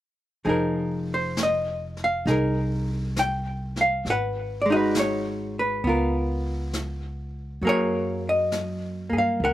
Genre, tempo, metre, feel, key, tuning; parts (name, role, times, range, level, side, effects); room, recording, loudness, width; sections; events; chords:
jazz ballad; 67 BPM; 4/4; swing 69% on 8ths; F minor; A4 = 439 Hz
archtop guitar, miked and amplified; accompaniment; 0.4-9.5 s; F3 to G5; -23 LUFS; equal
upright bass; bass; 0.5-9.5 s; F1 to G2; -30 LUFS; equal
jazz brush drum kit; drums; 0.5-9.5 s; brushed snare drum, hi-hat, snare drum; -33 LUFS; right 1 dB
little or no reverb; -23 LUFS; side -14 dB against mid
0.5-9.5 A section
0.5 Fm7; 4.1 Abm7; 5.8 Db6; 7.6 Gbadd9